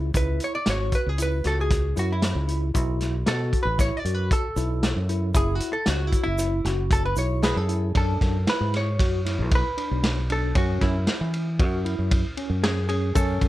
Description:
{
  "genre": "progressive instrumental, band music in an uneven meter",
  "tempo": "115 BPM",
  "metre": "5/4",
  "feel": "straight",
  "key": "unclear",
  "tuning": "A4 = 440 Hz",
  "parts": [
    { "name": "bright tine electric piano", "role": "arpeggios", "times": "0.0-13.5 s", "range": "C#4 to F#4", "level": "-31 LUFS", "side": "left 1 dB", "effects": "medium stereo tremolo, tape echo" },
    { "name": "fingered electric bass", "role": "bass", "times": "0.0-13.5 s", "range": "F#1 to E3", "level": "-25 LUFS", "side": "equal", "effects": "none" },
    { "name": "loose indie drum kit", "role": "drums", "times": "0.1-13.5 s", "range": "hi-hat, kick drum, ride cymbal, snare drum", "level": "-25 LUFS", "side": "equal", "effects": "none" },
    { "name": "egg shaker", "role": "percussion", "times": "0.1-7.6, 13.2-13.5 s", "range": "none", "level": "-40 LUFS", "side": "right 5 dB", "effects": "none" },
    { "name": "hollow-body jazz guitar", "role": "melody", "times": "0.2-13.5 s", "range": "E4 to D5", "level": "-28 LUFS", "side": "equal", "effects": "none" }
  ],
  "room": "light reverb",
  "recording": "dark, warm production",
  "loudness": "-21 LUFS",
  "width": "side -15 dB against mid",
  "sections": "0.0-8.0 A section; 8.0-13.5 B section",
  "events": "hollow-body jazz guitar solo 0.0-8.0",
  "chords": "0.1 C#m; 2.8 B5; 5.4 F#5; 8.0 E9sus4/F#; 10.6 C#madd11/F#",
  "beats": "| 0.15 0.67 1.19 1.71 2.23 | 2.75 3.27 3.79 4.31 4.83 | 5.35 5.87 6.39 6.91 7.43 | 7.95 8.47 8.99 9.52 10.04 | 10.55 11.07 11.60 12.12 12.63 | 13.15"
}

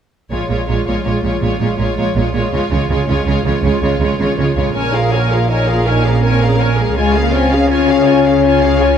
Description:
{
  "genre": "cinematic, heroic adventure film score",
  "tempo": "109 BPM (dotted quarters)",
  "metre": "12/8",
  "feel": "straight",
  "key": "unclear",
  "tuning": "A4 = 440 Hz",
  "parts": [
    { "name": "rich symphonic violin section", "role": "melody", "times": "0.3-9.0 s", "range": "Db5 to Ab5", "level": "-23 LUFS", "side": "left 4 dB", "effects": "none" },
    { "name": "warm symphonic violin section", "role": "second line", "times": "0.3-9.0 s", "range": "F4 to F5", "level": "-22 LUFS", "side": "left 2 dB", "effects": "none" },
    { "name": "rich symphonic viola section", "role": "accompaniment", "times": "0.3-9.0 s", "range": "Ab3 to Bb4", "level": "-20 LUFS", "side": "right 3 dB", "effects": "none" },
    { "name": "rich symphonic double bass section", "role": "bass", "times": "0.3-9.0 s", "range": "Bb1 to Db2", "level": "-18 LUFS", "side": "right 3 dB", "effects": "none" },
    { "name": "warm symphonic cello section", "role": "bass", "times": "0.3-9.0 s", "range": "Bb2 to Db3", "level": "-20 LUFS", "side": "right 3 dB", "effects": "none" },
    { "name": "mellow French horn section", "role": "sustained chords", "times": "4.8-9.0 s", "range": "Ab3 to Gb4", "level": "-15 LUFS", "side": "left 6 dB", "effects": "none" }
  ],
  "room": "moderate concert hall reverb, RT60 2.2 s",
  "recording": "none",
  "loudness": "-12 LUFS",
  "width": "side -8 dB against mid",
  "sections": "0.3-4.8 A section; 4.8-9.0 B section",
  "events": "none",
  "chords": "0.3 Bbm7; 2.5 Db; 4.8 Bbm7; 7.0 Db",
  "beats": "| 0.32 0.87 1.43 1.98 | 2.53 3.09 3.64 4.20 | 4.76 5.32 5.87 6.42 | 6.97 7.52 8.07 8.62"
}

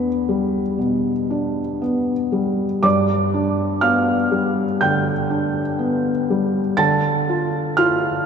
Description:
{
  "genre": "neoclassical minimalist piano",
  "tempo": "60 BPM",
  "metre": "4/4",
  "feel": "rubato",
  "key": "unclear",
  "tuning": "A4 = 440 Hz",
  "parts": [
    { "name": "felt-muted upright piano", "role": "solo", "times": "0.0-8.3 s", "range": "E2 to A6", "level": "-17 LUFS", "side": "equal", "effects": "none" }
  ],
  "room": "wet cathedral reverb, RT60 4.6 s",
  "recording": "recorded in a church or concert hall",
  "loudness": "-17 LUFS",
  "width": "side -6 dB against mid",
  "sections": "0.0-8.3 A section",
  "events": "none",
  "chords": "0.0 Em7; 2.8 G; 6.8 Dmadd9",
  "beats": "0.80 1.82 | 2.84 3.84 4.83 5.80 | 6.79 7.78"
}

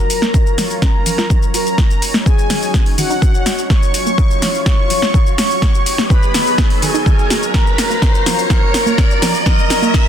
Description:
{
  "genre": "progressive house",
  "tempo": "125 BPM",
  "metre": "4/4",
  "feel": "straight",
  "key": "F# major",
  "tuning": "A4 = 440 Hz",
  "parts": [
    { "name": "expressive synth lead", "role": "melody", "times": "0.0-10.1 s", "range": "F#4 to C#5", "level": "-20 LUFS", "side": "left 1 dB", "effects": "wide subtle chorus, ping-pong delay" },
    { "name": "soft supersaw", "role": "second line", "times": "0.0-10.1 s", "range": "F#5 to C#6", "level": "-25 LUFS", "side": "equal", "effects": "sidechain pumping, ping-pong delay" },
    { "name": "lush unison pad", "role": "sustained chords", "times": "0.0-10.1 s", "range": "F#3 to C#5", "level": "-25 LUFS", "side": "equal", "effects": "chorus, phaser, sidechain pumping" },
    { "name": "riser", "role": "sound effects", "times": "2.0-10.1 s", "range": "none", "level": "-24 LUFS", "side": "equal", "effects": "none" },
    { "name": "deep house drum kit", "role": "drums", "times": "0.1-10.0 s", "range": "hi-hat, shaker, snare drum", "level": "-19 LUFS", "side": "equal", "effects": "overdrive, sidechain pumping on perc, sidechain pumping on hats" },
    { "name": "wide unison pluck", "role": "arpeggios", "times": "0.2-9.9 s", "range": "D#3 to F#4", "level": "-23 LUFS", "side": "right 2 dB", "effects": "sidechain pumping, ping-pong delay" },
    { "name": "electronic kick drum", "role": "drums", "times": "0.3-10.0 s", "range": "none", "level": "-14 LUFS", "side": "equal", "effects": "overdrive" }
  ],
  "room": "light reverb, digital ambience",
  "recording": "dense, heavily limited modern master",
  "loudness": "-12 LUFS",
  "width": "side -9 dB against mid",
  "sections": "0.0-10.1 A section",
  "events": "build-up 0.0-10.1; drum fill 0.0-10.1; filter sweep on synth pluck 0.0-10.1; riser 2.0-10.1",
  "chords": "0.0 F#maj7; 1.8 D#m7; 3.7 F#maj7(no3); 5.6 B; 7.5 F#maj7; 9.5 D#m7",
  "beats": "0.34 0.82 1.30 | 1.78 2.26 2.74 3.22 | 3.70 4.18 4.66 5.14 | 5.62 6.10 6.58 7.06 | 7.54 8.02 8.50 8.98 | 9.46 9.94"
}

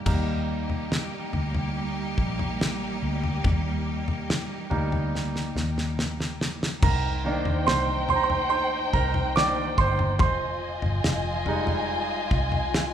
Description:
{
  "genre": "pop ballad",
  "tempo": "71 BPM",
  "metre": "4/4",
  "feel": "straight",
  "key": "unclear",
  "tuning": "A4 = 440 Hz",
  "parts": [
    { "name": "bright concert grand piano", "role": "accompaniment", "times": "0.0-12.9 s", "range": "Eb3 to D6", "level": "-28 LUFS", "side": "right 3 dB", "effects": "none" },
    { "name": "bright studio string section", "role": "sustained chords", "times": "0.0-6.8 s", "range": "G3 to G4", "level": "-32 LUFS", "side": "right 1 dB", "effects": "none" },
    { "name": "vintage muted fingered electric bass", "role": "bass", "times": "0.0-12.9 s", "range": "F1 to Eb2", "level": "-30 LUFS", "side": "equal", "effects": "none" },
    { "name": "damped 70s drum kit", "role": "drums", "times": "0.1-12.9 s", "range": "crash cymbal, kick drum, snare drum, toms", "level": "-27 LUFS", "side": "left 1 dB", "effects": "none" },
    { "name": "dark studio violin section", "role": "second line", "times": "6.8-12.9 s", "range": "Eb4 to Ab5", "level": "-29 LUFS", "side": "left 2 dB", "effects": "none" }
  ],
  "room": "moderate recital hall reverb, RT60 1.6 s",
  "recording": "recorded in a church or concert hall",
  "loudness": "-23 LUFS",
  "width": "side -9 dB against mid",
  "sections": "0.1-6.8 A section; 6.8-12.9 B section",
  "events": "grand piano solo 0.1-6.8, 6.8-12.9; drum fill 5.1-6.8",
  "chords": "0.1 Eb; 6.8 Cm7; 10.2 Fm7",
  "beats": "| 0.07 0.91 1.75 2.60 | 3.44 4.29 5.14 5.98 | 6.83 7.67 8.52 9.36 | 10.21 11.05 11.90 12.74"
}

